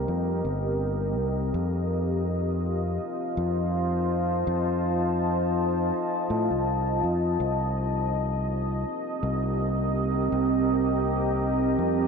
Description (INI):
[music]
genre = ambient dub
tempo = 82 BPM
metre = 4/4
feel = swing 56% on 16ths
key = C dorian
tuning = A4 = 440 Hz
[part]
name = deep dark ambient pad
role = sustained chords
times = 0.0-12.1 s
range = C4 to A5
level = -26 LUFS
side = equal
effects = chorus, built-in reverb
[part]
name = overdriven fingered electric bass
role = bass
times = 0.0-12.1 s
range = G1 to A2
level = -28 LUFS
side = equal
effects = none
[sound]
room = wet cathedral reverb, RT60 6.4 s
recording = dreamy mix soaked in reverb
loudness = -24 LUFS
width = side -5 dB against mid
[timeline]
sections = 0.0-7.4 A section; 7.4-12.1 B section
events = none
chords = 0.0 Cm7; 1.5 F7; 7.4 Cm7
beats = 0.08 0.81 | 1.54 2.27 3.01 3.74 | 4.47 5.20 5.93 6.67 | 7.40 8.13 8.86 9.59 | 10.32 11.06 11.79